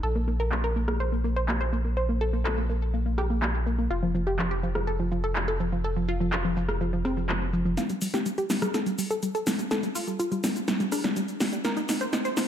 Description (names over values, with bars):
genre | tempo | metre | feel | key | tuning
progressive house | 124 BPM | 4/4 | straight | unclear | A4 = 440 Hz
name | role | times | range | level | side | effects
wide unison pluck | arpeggios | 0.0-12.5 s | F3 to C5 | -29 LUFS | equal | cassette tape, ping-pong delay
saturated sub bass | bass | 0.0-7.8 s | F1 to Bb1 | -28 LUFS | equal | tube saturation
deep house drum kit | drums | 0.0-12.5 s | handclaps, hi-hat, rim click, shaker, snare drum | -29 LUFS | equal | overdrive, low-pass filter on perc, low-pass filter on snare, low-pass filter on hats, low-pass filter on room
room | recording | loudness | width
light reverb, digital ambience | high-pass filter | -25 LUFS | side -10 dB against mid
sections
0.0-7.8 A section; 7.8-12.5 B section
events
build-up 7.8-12.5; drum fill 7.8-12.5; filter sweep on synth pluck 7.8-12.5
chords
none